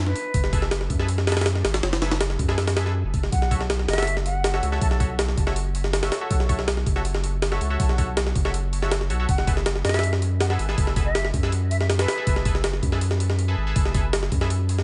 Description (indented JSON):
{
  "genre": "drum and bass, jungle",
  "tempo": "161 BPM",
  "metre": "4/4",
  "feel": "straight",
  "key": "unclear",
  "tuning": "A4 = 440 Hz",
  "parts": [
    { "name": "saturated sub bass", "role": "bass", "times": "0.0-14.8 s", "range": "F#1 to F#2", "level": "-27 LUFS", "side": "equal", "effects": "none" },
    { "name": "concert flute", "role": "melody", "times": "0.1-0.6, 3.3-5.0, 9.3-12.5 s", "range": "B4 to A5", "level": "-34 LUFS", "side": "equal", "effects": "dub echo" },
    { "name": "jungle sampler-style drum kit", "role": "drums", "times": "0.1-14.8 s", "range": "hi-hat, kick drum, snare drum", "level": "-26 LUFS", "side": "equal", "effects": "none" },
    { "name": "band-passed chord stab", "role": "stabs", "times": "0.5-14.5 s", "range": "F#4 to E5", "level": "-35 LUFS", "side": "equal", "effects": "chorus, dub echo" }
  ],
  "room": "little or no reverb",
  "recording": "nothing above 10.4 kHz",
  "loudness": "-23 LUFS",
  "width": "mono",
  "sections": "0.0-3.3 A section; 3.3-14.8 A section",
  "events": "drop 0.0-3.3, 3.3-14.8",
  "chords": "0.0 F#m11; 3.3 B9sus4; 9.3 F#m11"
}